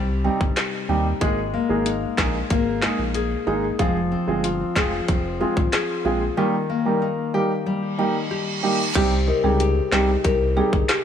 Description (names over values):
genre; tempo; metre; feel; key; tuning
dancehall; 93 BPM; 4/4; straight; unclear; A4 = 440 Hz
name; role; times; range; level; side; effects
nylon-string guitar; arpeggios; 0.0-11.0 s; C3 to Ab4; -25 LUFS; left 6 dB; tape echo
round analog bass; bass; 0.0-10.9 s; F1 to Eb2; -25 LUFS; equal; none
warm concert grand piano; accompaniment; 0.2-10.7 s; G3 to Ab4; -25 LUFS; right 4 dB; none
island pop drum kit; drums; 0.4-11.0 s; crash cymbal, handclaps, hi-hat, kick drum, snare drum; -24 LUFS; equal; none
reverse cymbal; sound effects; 7.9-9.0 s; none; -29 LUFS; right 4 dB; none
marimba with medium mallets; melody; 9.0-11.0 s; G4 to Bb4; -23 LUFS; left 1 dB; tape echo
room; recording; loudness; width
light reverb, studio ambience; none; -19 LUFS; side -8 dB against mid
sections
0.0-9.0 A section; 9.0-11.0 B section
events
reverse cymbal 7.9-9.0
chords
0.0 Cm; 1.2 Absus2; 3.8 Fm; 6.4 Eb; 9.0 Cm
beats
0.57 | 1.21 1.86 2.50 3.15 | 3.79 4.44 5.08 5.73 | 6.37 7.02 7.66 8.31 | 8.95 9.60 10.24 10.89